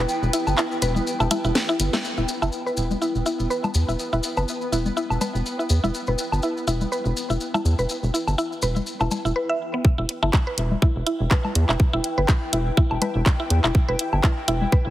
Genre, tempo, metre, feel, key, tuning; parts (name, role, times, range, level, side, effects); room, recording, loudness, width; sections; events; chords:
minimal techno; 123 BPM; 4/4; swing 56% on 16ths; E minor; A4 = 440 Hz
rubbery square bass; bass; 0.0-14.9 s; E1 to E2; -23 LUFS; equal; sidechain pumping
granular cloud pad; texture; 0.0-14.9 s; E4 to G5; -32 LUFS; equal; built-in reverb, sidechain pumping
pulsing gated texture; texture; 0.0-14.9 s; B3 to E5; -35 LUFS; left 2 dB; chorus, built-in reverb, sidechain pumping
maracas; percussion; 0.1-9.3 s; -33 LUFS; left 3 dB
mallet-like synth pluck; riff; 0.3-14.8 s; B3 to E5; -26 LUFS; equal; chorus, sidechain pumping, tape echo
garage drum kit; drums; 0.3-2.0, 10.1-14.6 s; handclaps, hi-hat, snare drum; -26 LUFS; equal
woodblock and congas; percussion; 0.5-14.7 s; -28 LUFS; left 3 dB; tape echo
electronic kick drum; drums; 9.8-14.8 s; -18 LUFS; equal
light reverb; heavily compressed radio sound, multiband compression; -20 LUFS; side -14 dB against mid
0.0-2.0 A section; 2.0-9.8 B section; 9.8-14.9 C section
filter sweep on synth arpeggio sound 0.0-2.0, 2.0-9.8; kick drops out 0.1-2.0; drum fill 1.6-2.0; band accent 1.9; drop 9.8-14.9
0.0 Em